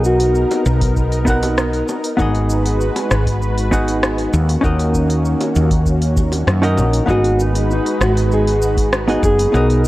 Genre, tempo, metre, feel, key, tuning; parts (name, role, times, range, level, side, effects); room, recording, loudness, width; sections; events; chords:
sunset chillout; 98 BPM; 4/4; straight; G# minor; A4 = 440 Hz
mellow electric guitar; melody; 0.0-0.6, 7.1-9.9 s; D#4 to G#4; -19 LUFS; equal; spring reverb, ping-pong delay
hollow-body jazz guitar; accompaniment; 0.0-9.9 s; B3 to F#5; -21 LUFS; equal; auto-pan, tape echo
lush unison pad; sustained chords; 0.0-9.9 s; D#3 to B4; -22 LUFS; equal; chorus
woody fretless electric bass; bass; 0.0-9.9 s; F#1 to F#2; -17 LUFS; equal; tube saturation
deep house drum kit; drums; 0.0-9.9 s; hi-hat, rim click, shaker; -24 LUFS; equal
bongos; percussion; 0.5-6.9 s; -28 LUFS; right 1 dB
electronic kick drum; drums; 0.8-9.4 s; -20 LUFS; equal; overdrive
light reverb; worn, warbling old tape, cassette tape, warbly pitch drift; -14 LUFS; side -17 dB against mid
0.0-7.1 A section; 7.1-9.9 B section
0.0 Bmaj7; 2.2 G#m7; 4.3 D#m7; 7.1 G#m7